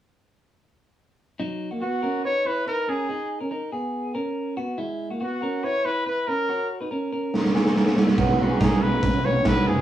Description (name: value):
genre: jangly indie pop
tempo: 141 BPM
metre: 4/4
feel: straight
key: B major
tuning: A4 = 438 Hz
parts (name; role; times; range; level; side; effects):
- clean electric guitar; arpeggios; 1.4-9.8 s; F#3 to A#5; -28 LUFS; equal; none
- bright trumpet; melody; 1.8-9.8 s; F#4 to C#5; -25 LUFS; equal; none
- raw garage drum kit; drums; 7.3-9.6 s; crash cymbal, hi-hat, kick drum, snare drum; -20 LUFS; right 1 dB; none
- fingerpicked twelve-string acoustic guitar; accompaniment; 8.2-9.8 s; B2 to F#4; -27 LUFS; right 6 dB; none
- vintage muted fingered electric bass; bass; 8.2-9.8 s; F#1 to B1; -28 LUFS; right 1 dB; none
room: moderate studio reverb, RT60 0.5 s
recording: rough rehearsal-room recording, studio ambience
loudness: -22 LUFS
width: side -12 dB against mid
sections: 1.4-8.2 A section; 8.2-9.8 B section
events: drum fill 7.3-8.2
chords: 1.4 Badd9; 3.1 G#sus2; 4.6 Eadd9; 6.3 F#; 8.2 Badd9